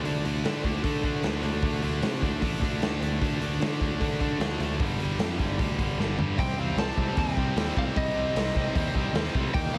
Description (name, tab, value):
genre	punk rock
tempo	152 BPM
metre	4/4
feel	straight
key	unclear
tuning	A4 = 440 Hz
part	tight distorted guitar	riff	0.0-9.8 s	G2 to Eb4	-36 LUFS	equal	distortion
part	tight distorted guitar	riff	0.0-9.8 s	G2 to Eb4	-36 LUFS	equal	distortion
part	modern bright picked electric bass	bass	0.0-9.8 s	G1 to D3	-33 LUFS	equal	none
part	raw garage drum kit	drums	0.0-9.6 s	hi-hat, kick drum, snare drum, toms	-32 LUFS	equal	none
part	lightly driven lead guitar	melody	6.4-9.8 s	Eb5 to A5	-35 LUFS	equal	tape echo
part	tight distorted guitar	riff	6.4-9.8 s	C3 to Eb4	-40 LUFS	equal	none
room	light reverb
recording	heavily compressed radio sound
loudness	-27 LUFS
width	mono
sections	0.0-6.4 A section; 6.4-9.8 B section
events	drum fill 6.0-6.4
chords	0.0 D5; 4.8 G5; 6.4 Cm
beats	| 0.04 0.44 0.83 1.23 | 1.63 2.02 2.42 2.82 | 3.21 3.61 4.01 4.41 | 4.80 5.20 5.59 5.99 | 6.38 6.78 7.17 7.57 | 7.96 8.36 8.75 9.15 | 9.54